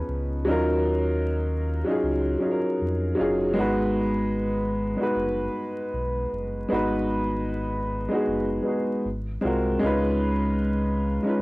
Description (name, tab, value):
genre	hip hop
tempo	77 BPM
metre	4/4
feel	swing 60% on 16ths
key	G# dorian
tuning	A4 = 439 Hz
part	warm upright piano	accompaniment	0.0-11.4 s	E#3 to B4	-24 LUFS	equal	cassette tape, low-pass filter, plate reverb
part	sub bass with octave	bass	0.0-11.4 s	F#1 to E#2	-29 LUFS	equal	none
room	moderate small room reverb, RT60 0.5 s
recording	home recording on cassette, vinyl crackle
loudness	-23 LUFS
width	side -21 dB against mid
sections	0.0-11.4 A section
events	none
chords	0.5 D#m9; 3.6 G#m7; 9.0 G#13; 9.8 C#9